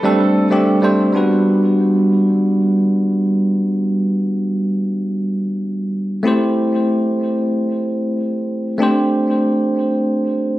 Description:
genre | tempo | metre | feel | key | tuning
chillout | free time | none | none | G major | A4 = 440 Hz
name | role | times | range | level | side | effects
bright grand piano | melody | 0.0-0.5 s | A4 | -30 LUFS | equal | ping-pong delay
bell-like tine electric piano | accompaniment | 0.0-10.6 s | G3 to C5 | -15 LUFS | equal | auto-pan, ping-pong delay
room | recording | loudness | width
moderate plate reverb, RT60 2.7 s | recorded on a phone in the room, studio reverb | -15 LUFS | side -16 dB against mid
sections
0.0-1.1 A section; 1.1-10.6 B section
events
filter sweep on tine electric piano 0.0-1.1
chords
0.0 D7sus4; 1.1 Gmaj7; 6.3 Am7; 8.8 D7sus4

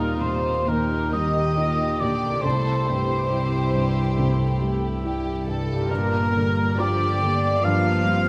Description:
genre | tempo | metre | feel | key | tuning
cinematic | 69 BPM | 4/4 | rubato | unclear | A4 = 440 Hz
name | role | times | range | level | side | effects
dark studio violin section | melody | 0.0-8.3 s | Eb4 to Bb4 | -34 LUFS | equal | none
mellow cor anglais | second line | 0.0-8.3 s | Bb4 to F5 | -29 LUFS | equal | none
warm studio violin section | second line | 0.0-8.3 s | Bb4 to F5 | -33 LUFS | equal | none
dark studio viola section | accompaniment | 0.0-8.3 s | F3 to G4 | -32 LUFS | equal | none
felt-muted upright piano | accompaniment | 0.0-8.3 s | C2 to F4 | -29 LUFS | equal | none
concert harp | arpeggios | 0.0-8.3 s | G2 to G4 | -34 LUFS | equal | none
dark chamber cello section | bass | 0.0-8.3 s | Bb2 to F3 | -31 LUFS | equal | none
dark studio double bass section | bass | 0.0-8.3 s | G1 to Eb2 | -31 LUFS | equal | none
room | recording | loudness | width
wet recital hall reverb, RT60 1.3 s | none | -23 LUFS | mono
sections
0.0-8.3 A section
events
none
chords
0.0 Eb; 2.4 C; 5.9 Gm7

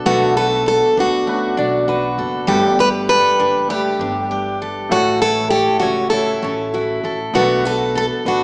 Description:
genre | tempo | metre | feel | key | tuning
acoustic pop | 99 BPM | 4/4 | swing 55% on 16ths | unclear | A4 = 441 Hz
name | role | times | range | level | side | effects
picked steel-string acoustic guitar | accompaniment | 0.0-8.4 s | A2 to A4 | -25 LUFS | equal | none
warm grand piano | accompaniment | 0.0-8.4 s | A3 to F#5 | -29 LUFS | equal | none
upright bass | bass | 0.0-8.4 s | F#1 to D2 | -31 LUFS | equal | none
picked plugged-in steel-string acoustic guitar | melody | 0.1-8.4 s | F#4 to B4 | -19 LUFS | equal | none
nylon-string guitar | arpeggios | 0.1-8.4 s | F#4 to D5 | -28 LUFS | equal | none
room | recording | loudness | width
moderate scoring stage reverb, RT60 1.9 s | recorded in a church or concert hall, small speaker sound | -17 LUFS | mono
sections
0.0-8.4 A section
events
none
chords
0.0 Bm7; 2.5 Gadd9; 4.9 A6; 7.3 Bm7

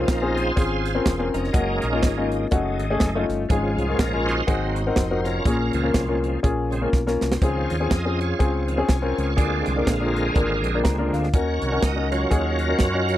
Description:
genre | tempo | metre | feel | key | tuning
uptempo gospel | 123 BPM | 4/4 | swing 59% on 8ths | Db major | A4 = 440 Hz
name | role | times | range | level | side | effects
warm upright piano | accompaniment | 0.0-13.2 s | Ab2 to Bb5 | -24 LUFS | left 4 dB | none
bright tonewheel organ | sustained chords | 0.0-13.2 s | Db3 to F5 | -26 LUFS | right 2 dB | slow rotary speaker, chorus vibrato
fingered electric bass | bass | 0.0-13.2 s | Fb1 to Gb2 | -26 LUFS | equal | none
crisp fusion drum kit | drums | 0.1-13.2 s | hi-hat, kick drum, snare drum | -22 LUFS | right 1 dB | none
room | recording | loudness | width
little or no reverb | dry, close 1970s-style studio recording | -20 LUFS | side -13 dB against mid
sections
0.0-13.2 A section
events
tonewheel organ solo 0.0-13.2; drum fill 6.9-7.4; upright piano fill 10.6-11.3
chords
0.0 Dbmaj7; 1.5 Gb6; 2.5 Gbm6; 3.5 Db/Ab; 4.5 Ab7; 5.5 Bbm7; 7.4 Dbmaj7; 9.4 Bb7; 11.3 Ebm7

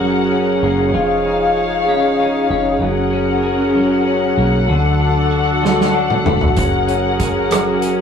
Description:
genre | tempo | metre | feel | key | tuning
six-eight pop ballad | 64 BPM (dotted quarters) | 6/8 | straight | F# major | A4 = 440 Hz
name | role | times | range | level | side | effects
twelve-string electric guitar | accompaniment | 0.0-8.0 s | F#2 to G#4 | -19 LUFS | equal | none
warm studio string section | sustained chords | 0.0-8.0 s | C#4 to F#5 | -16 LUFS | left 2 dB | none
vintage muted fingered electric bass | bass | 0.0-8.0 s | E1 to D2 | -22 LUFS | right 1 dB | none
loose indie drum kit | drums | 5.6-8.0 s | hi-hat, kick drum, rim click, snare drum, toms | -18 LUFS | right 1 dB | none
room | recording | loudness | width
wet small room reverb, RT60 0.5 s | rough rehearsal-room recording, tube saturation | -13 LUFS | side -7 dB against mid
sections
0.0-8.0 A section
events
drum fill 5.6-6.6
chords
0.0 F#add9; 0.9 C#add9/E#; 2.8 F#add9; 4.7 D; 6.6 F#add9

